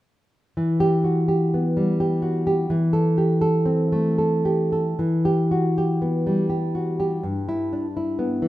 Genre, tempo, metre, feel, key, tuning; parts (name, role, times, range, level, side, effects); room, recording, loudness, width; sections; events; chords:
romantic piece for solo classical guitar; 72-86 BPM; 3/4; rubato; E minor; A4 = 440 Hz
nylon-string guitar; solo; 0.6-8.5 s; G2 to A4; -19 LUFS; equal
wet recital hall reverb, RT60 1.5 s; minimal, uncompressed stereo recording; -19 LUFS; side -15 dB against mid
0.6-5.0 A section; 5.0-8.5 B section
0.6 Em; 2.7 Am/E; 5.0 Em; 7.2 Em/G